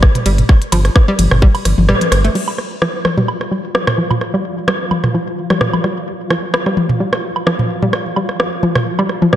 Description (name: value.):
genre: minimal techno.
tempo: 129 BPM.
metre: 4/4.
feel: swing 54% on 16ths.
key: unclear.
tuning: A4 = 440 Hz.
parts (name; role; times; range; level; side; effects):
round analog bass; bass; 0.0-2.3 s; G1; -13 LUFS; equal; sidechain pumping.
electronic kick drum; drums; 0.0-1.5 s; none; -9 LUFS; equal; none.
minimal click drum kit; drums; 0.0-9.4 s; crash cymbal, hi-hat, ride cymbal, rim click; -20 LUFS; equal; none.
booming analog drum machine; percussion; 0.0-9.4 s; rim click, toms, woodblock; -18 LUFS; equal; ping-pong delay.
hollow square pluck; riff; 0.3-9.4 s; F3 to A3; -20 LUFS; equal; chorus, cassette tape, sidechain pumping, tape echo.
flickering grainy texture; texture; 2.7-9.4 s; F3 to F4; -26 LUFS; equal; built-in reverb, sidechain pumping.
room: moderate lush hall reverb, RT60 1.7 s, digital ambience.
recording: dark, warm production.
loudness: -13 LUFS.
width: side -12 dB against mid.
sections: 0.0-2.4 A section; 2.4-9.4 B section.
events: drop 0.0-2.4; kick drops out 1.9-2.4; band accent 1.9.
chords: 0.0 G5; 2.4 N.C..